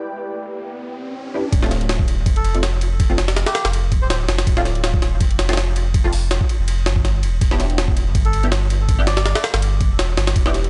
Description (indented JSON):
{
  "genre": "drum and bass, jungle",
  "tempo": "163 BPM",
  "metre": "4/4",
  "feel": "swing 54% on 16ths",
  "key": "D dorian",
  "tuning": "A4 = 440 Hz",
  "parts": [
    { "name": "airy breathy pad", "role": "sustained chords", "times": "0.0-1.5 s", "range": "E4 to G5", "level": "-33 LUFS", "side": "equal", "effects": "chorus" },
    { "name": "riser", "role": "sound effects", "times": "0.1-1.5 s", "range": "none", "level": "-35 LUFS", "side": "equal", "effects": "none" },
    { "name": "filtered dub chord stab", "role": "stabs", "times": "1.3-10.7 s", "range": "A3 to G4", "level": "-30 LUFS", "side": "equal", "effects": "phaser, ensemble chorus, dub echo" },
    { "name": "saturated sub bass", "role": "bass", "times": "1.5-10.7 s", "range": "D1 to G1", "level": "-22 LUFS", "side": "equal", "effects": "tube saturation" },
    { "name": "jungle sampler-style drum kit", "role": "drums", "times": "1.5-10.7 s", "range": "hi-hat, kick drum, ride cymbal, snare drum", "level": "-21 LUFS", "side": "equal", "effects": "none" },
    { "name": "melodica", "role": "melody", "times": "2.4-4.2, 8.2-9.4 s", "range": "G4 to D5", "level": "-31 LUFS", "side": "equal", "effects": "vintage 12-bit sampler grit, dub echo" }
  ],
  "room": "digital ambience",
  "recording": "dry, gritty hardware recording, transformer saturation, low-pass filter, nothing above 11.0 kHz",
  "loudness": "-19 LUFS",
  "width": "mono",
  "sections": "0.0-1.5 A section; 1.5-10.7 B section",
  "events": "filter sweep 0.0-1.5; riser 0.1-1.5; drop 1.5-10.7",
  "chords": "0.0 Em7; 1.5 Dm7; 7.4 Em7"
}